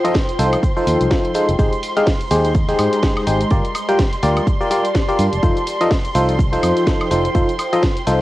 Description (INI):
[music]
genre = piano house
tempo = 125 BPM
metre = 4/4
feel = swing 57% on 16ths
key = F mixolydian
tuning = A4 = 440 Hz
[part]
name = warm symphonic violin section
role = sustained chords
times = 0.0-8.2 s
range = C6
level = -27 LUFS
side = right 2 dB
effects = vintage 12-bit sampler grit, sidechain pumping, cassette tape
[part]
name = barking FM electric piano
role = riff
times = 0.0-8.2 s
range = F3 to G5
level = -18 LUFS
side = left 1 dB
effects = chorus, sidechain pumping, cassette tape, tape echo
[part]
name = house drum kit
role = drums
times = 0.0-8.2 s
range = cabasa, hi-hat, snare drum, woodblock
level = -25 LUFS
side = equal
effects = cassette tape
[part]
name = ethereal airy pad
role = texture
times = 0.0-8.2 s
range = Ab3 to Bb5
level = -26 LUFS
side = equal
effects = ensemble chorus, built-in reverb, sidechain pumping, cassette tape
[part]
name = big rock drum kit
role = drums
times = 0.1-8.2 s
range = hi-hat, ride cymbal, snare drum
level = -39 LUFS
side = equal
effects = none
[part]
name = electronic kick drum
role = drums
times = 0.1-7.9 s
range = none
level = -18 LUFS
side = equal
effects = cassette tape
[part]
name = fingered electric bass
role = bass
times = 0.4-8.2 s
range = F1 to Ab2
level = -20 LUFS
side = equal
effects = sidechain pumping
[sound]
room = light reverb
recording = home recording on cassette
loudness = -15 LUFS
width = side -16 dB against mid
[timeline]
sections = 0.0-8.2 A section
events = none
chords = 0.0 F7; 1.6 Abmaj7; 3.5 Gm7; 5.4 F7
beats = 0.15 0.63 1.11 | 1.59 2.07 2.55 3.03 | 3.51 3.99 4.47 4.95 | 5.43 5.91 6.39 6.87 | 7.35 7.83